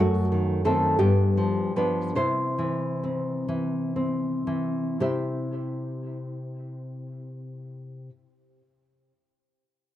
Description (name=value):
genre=romantic piece for solo classical guitar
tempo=37-61 BPM (dotted quarters)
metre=6/8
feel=rubato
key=C major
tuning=A4 = 440 Hz
part: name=nylon-string guitar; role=solo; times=0.0-8.1 s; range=F#2 to E5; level=-24 LUFS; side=equal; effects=tape echo
room=wet small room reverb, RT60 0.5 s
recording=dark, warm production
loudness=-24 LUFS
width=side -13 dB against mid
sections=0.0-5.0 A section; 5.0-9.9 B section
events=slowing down 0.0-5.0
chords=0.0 F#dim7; 1.0 G7; 2.2 C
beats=1.00 | 2.17 3.48 | 5.00 6.54 | 8.08